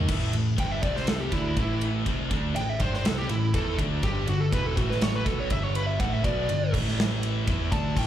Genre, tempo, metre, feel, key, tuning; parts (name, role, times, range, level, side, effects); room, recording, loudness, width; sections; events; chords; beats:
hard rock; 122 BPM; 4/4; straight; A4 = 440 Hz
crunchy overdriven guitar; riff; 0.0-8.1 s; E2 to G4; -32 LUFS; right 9 dB
scooped high-gain guitar; riff; 0.0-8.1 s; E2 to G4; -33 LUFS; left 10 dB; distortion, slapback echo
sludgy distorted guitar; riff; 0.0-0.1, 8.0-8.1 s; A2 to A3; -39 LUFS; left 1 dB; overdrive, slapback echo
overdriven picked electric bass; bass; 0.0-8.1 s; E1 to G2; -29 LUFS; left 1 dB
big rock drum kit; drums; 0.1-8.1 s; crash cymbal, kick drum, ride cymbal, snare drum; -28 LUFS; equal
smooth overdriven lead guitar; melody; 0.6-8.1 s; E4 to A5; -31 LUFS; right 1 dB; slapback echo
light reverb, small room ambience; live gig heard through the venue's PA, club reverb; -24 LUFS; side -11 dB against mid
0.1-8.1 A section
lead electric guitar solo 0.1-8.1
0.1 A5; 0.8 C5; 1.3 A5; 4.0 G5; 4.8 A5; 5.3 G5; 6.7 A5; 7.5 Asus24
| 0.09 0.58 1.07 1.57 | 2.06 2.55 3.04 3.54 | 4.03 4.52 5.01 5.51 | 6.00 6.49 6.98 7.48 | 7.97